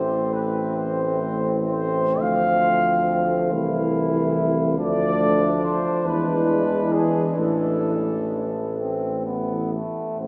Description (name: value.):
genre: classical, hymn-like piece for brass band.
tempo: 40-48 BPM (dotted quarters).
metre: 6/8.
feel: rubato.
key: A minor.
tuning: A4 = 440 Hz.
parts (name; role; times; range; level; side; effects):
dark trumpet section; melody; 0.0-10.3 s; G#4 to F5; -27 LUFS; equal; none.
mellow flugelhorn; second line; 0.0-10.3 s; A3 to C5; -31 LUFS; equal; none.
clear euphonium; accompaniment; 0.0-10.3 s; G#3 to E4; -30 LUFS; equal; none.
clear trombone; accompaniment; 0.0-10.3 s; E3 to A3; -29 LUFS; equal; none.
clear tuba; bass; 0.0-10.3 s; A1 to E2; -29 LUFS; equal; none.
room: wet cathedral reverb, RT60 6.0 s.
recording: none.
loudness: -22 LUFS.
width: mono.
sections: 0.0-10.2 A section.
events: none.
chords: 0.0 Am; 2.2 Dm7; 3.5 Am/C; 4.8 Dm; 6.0 E7; 7.4 A5.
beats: 0.75 | 2.19 3.52 | 4.78 6.05 | 7.37 8.77 | 10.19.